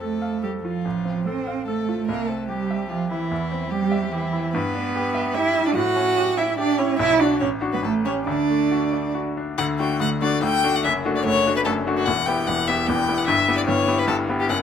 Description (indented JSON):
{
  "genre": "quick classical-period movement for piano trio",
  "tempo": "146 BPM",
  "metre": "3/4",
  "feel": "rubato",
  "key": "D major from 4.5 s",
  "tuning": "A4 = 441 Hz",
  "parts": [
    { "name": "clear violin", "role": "melody", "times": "0.0-14.6 s", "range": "E4 to G5", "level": "-26 LUFS", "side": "left 5 dB", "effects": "none" },
    { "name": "warm cello", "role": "second line", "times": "0.0-14.4 s", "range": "E3 to F#4", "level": "-23 LUFS", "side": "right 5 dB", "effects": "none" },
    { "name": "bright grand piano", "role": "accompaniment", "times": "0.0-14.6 s", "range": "E1 to F5", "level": "-24 LUFS", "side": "left 3 dB", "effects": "none" }
  ],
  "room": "light reverb",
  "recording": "none",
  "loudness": "-20 LUFS",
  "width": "side -8 dB against mid",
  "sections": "0.0-9.6 A section; 9.6-14.6 B section",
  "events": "none",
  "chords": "0.0 F; 0.8 F/A; 2.1 C; 3.3 C/E; 4.5 Em7/G; 5.8 A7; 7.0 Bm; 7.4 D/A; 7.8 A7; 8.3 D; 10.8 D/F#; 12.1 Em; 13.3 Em/G"
}